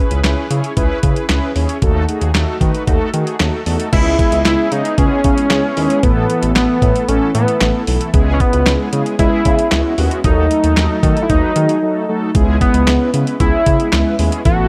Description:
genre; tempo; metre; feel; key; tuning
synth-pop; 114 BPM; 4/4; straight; C# minor; A4 = 442 Hz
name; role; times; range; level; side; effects
mellow synth brass; accompaniment; 0.0-14.7 s; E3 to C#5; -22 LUFS; equal; chorus
smooth synth bass; bass; 0.1-14.7 s; A1 to D#3; -20 LUFS; equal; none
detuned 8-bit digital drum machine; drums; 0.1-14.6 s; crash cymbal, handclaps, hi-hat, kick drum, snare drum; -19 LUFS; equal; none
octave-doubled lead; melody; 3.9-14.7 s; B3 to F#4; -19 LUFS; equal; chorus, tape echo
room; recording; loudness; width
little or no reverb; none; -15 LUFS; mono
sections
0.0-3.9 A section; 3.9-14.7 B section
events
break 11.8-12.3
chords
0.0 C#m7; 1.8 D#dim; 3.9 C#m7; 6.0 Asus2; 8.1 C#m7; 10.2 D#dim; 12.3 C#m7

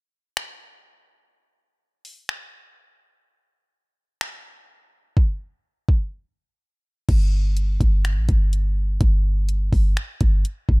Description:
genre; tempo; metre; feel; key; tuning
hip hop, atmospheric cloud-rap; 125 BPM; 4/4; half-time; unclear; A4 = 440 Hz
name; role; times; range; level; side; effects
smooth R&B drum kit; drums; 0.4-10.8 s; crash cymbal, finger snaps, hi-hat, kick drum; -20 LUFS; equal; none
clean 808-style bass; bass; 7.1-10.8 s; G1 to A1; -20 LUFS; equal; none
room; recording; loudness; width
little or no reverb; dark, warm production; -19 LUFS; side -31 dB against mid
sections
0.0-7.1 A section; 7.1-10.8 B section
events
break 6.1-7.1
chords
none

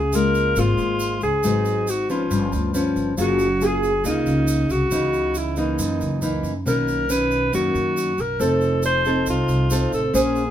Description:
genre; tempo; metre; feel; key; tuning
bossa nova; 138 BPM; 4/4; straight; unclear; A4 = 443 Hz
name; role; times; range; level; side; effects
breathy alto saxophone; melody; 0.0-10.5 s; Eb4 to C5; -22 LUFS; equal; none
nylon-string guitar; accompaniment; 0.0-10.5 s; Gb2 to C5; -22 LUFS; left 1 dB; none
upright bass; bass; 0.0-10.5 s; F1 to Gb2; -25 LUFS; right 1 dB; none
egg shaker; percussion; 0.1-10.5 s; none; -34 LUFS; right 4 dB; none
room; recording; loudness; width
light reverb; band playing live in one room; -18 LUFS; side -10 dB against mid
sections
0.0-10.5 A section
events
none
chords
0.0 Db6; 1.4 Abm7; 2.3 G7#11; 3.2 Gbmaj9; 4.9 Dbm9; 5.8 Gb6; 6.7 Cbmaj9; 8.4 F7

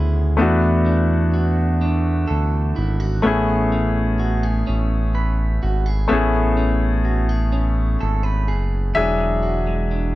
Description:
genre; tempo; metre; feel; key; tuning
slow six-eight R&B; 42 BPM (dotted quarters); 6/8; straight; A major; A4 = 441 Hz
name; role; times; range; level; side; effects
electric guitar at the edge of break-up; second line; 0.0-10.2 s; C#3 to B4; -26 LUFS; right 4 dB; none
warm grand piano; accompaniment; 0.0-10.2 s; F#3 to E5; -22 LUFS; left 3 dB; none
smooth synth bass; bass; 0.0-10.2 s; E1 to E2; -19 LUFS; equal; none
room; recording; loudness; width
little or no reverb; none; -17 LUFS; side -17 dB against mid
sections
0.0-9.0 A section; 9.0-10.2 B section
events
grand piano solo 9.0-10.2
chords
0.4 E9sus4; 3.2 Amaj9; 9.0 E9

